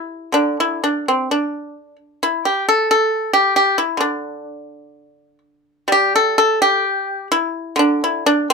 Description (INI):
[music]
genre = chinese traditional, Chinese solo plucked strings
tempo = 62-69 BPM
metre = 2/4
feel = rubato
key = D shang mode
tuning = A4 = 440 Hz
[part]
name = pipa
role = solo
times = 0.0-8.5 s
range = D3 to A4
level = -15 LUFS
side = equal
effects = none
[sound]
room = little or no reverb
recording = close, detailed microphones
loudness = -15 LUFS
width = side -4 dB against mid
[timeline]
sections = 0.0-5.9 A section; 5.9-8.5 B section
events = none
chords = none